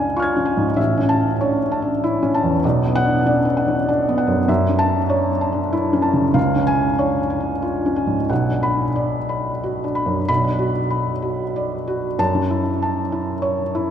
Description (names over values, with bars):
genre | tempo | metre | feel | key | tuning
neoclassical minimalist piano | 95 BPM | 3/4 | rubato | B dorian | A4 = 442 Hz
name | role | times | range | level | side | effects
felt-muted upright piano | solo | 0.0-13.9 s | A1 to G#6 | -17 LUFS | equal | none
room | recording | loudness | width
wet cathedral reverb, RT60 5.9 s | recorded in a church or concert hall | -17 LUFS | side -9 dB against mid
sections
0.0-10.3 A section; 10.3-13.9 B section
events
none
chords
0.0 C#; 0.8 A; 2.6 Bm; 4.5 F#m7; 6.4 C#; 8.3 Bm; 12.2 F#m7